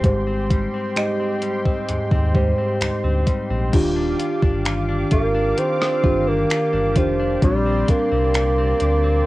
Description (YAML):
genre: contemporary R&B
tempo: 65 BPM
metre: 4/4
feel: straight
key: unclear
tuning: A4 = 437 Hz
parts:
  - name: muted felt-like synth keys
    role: accompaniment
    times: 0.0-9.3 s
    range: Ab2 to Eb5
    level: -23 LUFS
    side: equal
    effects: chorus, cassette tape
  - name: warm analog pad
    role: sustained chords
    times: 0.0-9.3 s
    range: G4 to D6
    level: -31 LUFS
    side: equal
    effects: chorus, tremolo, cassette tape
  - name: direct-recorded clean electric guitar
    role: arpeggios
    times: 0.0-9.3 s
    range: Ab2 to F4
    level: -29 LUFS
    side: left 3 dB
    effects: cassette tape, tape echo
  - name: sub bass with octave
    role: bass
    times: 0.0-9.2 s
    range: Eb1 to Eb2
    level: -22 LUFS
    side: equal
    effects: none
  - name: crisp 8-bit digital drum machine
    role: drums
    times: 0.0-9.0 s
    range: crash cymbal, finger snaps, hi-hat, kick drum, rim click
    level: -20 LUFS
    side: equal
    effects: overdrive, cassette tape
  - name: mellow bassoon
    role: melody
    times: 5.1-9.3 s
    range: F3 to C4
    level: -20 LUFS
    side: right 1 dB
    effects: cassette tape
room: little or no reverb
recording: home recording on cassette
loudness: -17 LUFS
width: side -18 dB against mid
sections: 0.0-3.7 A section; 3.7-9.3 B section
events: none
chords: 0.0 Abmaj7; 3.7 Ebmaj9; 7.4 Bb69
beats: | 0.04 0.96 1.89 2.81 | 3.73 4.65 5.58 6.50 | 7.42 8.35